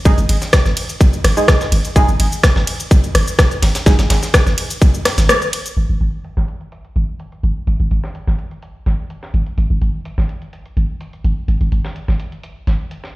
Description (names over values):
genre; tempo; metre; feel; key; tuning
minimal techno; 126 BPM; 4/4; straight; unclear; A4 = 440 Hz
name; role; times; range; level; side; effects
filtered dub chord stab; stabs; 0.1-4.0 s; G#3 to G#4; -22 LUFS; right 2 dB; wide subtle chorus, dub echo
punchy sub bass; bass; 0.1-12.8 s; G#1; -15 LUFS; equal; sidechain pumping
breakbeat sampler-style drum kit; drums; 0.1-13.1 s; hi-hat, snare drum; -28 LUFS; equal; high-pass filter on hats, low-pass filter on hats, high-pass filter on snare, low-pass filter on snare
electronic kick drum; drums; 0.1-4.9 s; none; -10 LUFS; equal; none
garage drum kit; drums; 0.1-12.8 s; cabasa, hi-hat, ride cymbal, rim click; -18 LUFS; left 1 dB; low-pass filter on hats, low-pass filter on perc, low-pass filter on snare, low-pass filter on cymbals
room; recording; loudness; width
light reverb; played on a big sound system in a bare room, stone room reverb; -14 LUFS; side -18 dB against mid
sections
0.0-5.8 A section; 5.8-13.2 B section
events
drop 0.0-5.8; break 5.3-5.8; band accent 5.3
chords
0.0 G#5; 5.8 N.C.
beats
| 0.05 0.53 1.01 1.48 | 1.96 2.44 2.91 3.39 | 3.86 4.34 4.82 5.29 | 5.77 6.24 6.72 7.20 | 7.67 8.15 8.62 9.10 | 9.58 10.05 10.53 11.01 | 11.48 11.96 12.44 12.91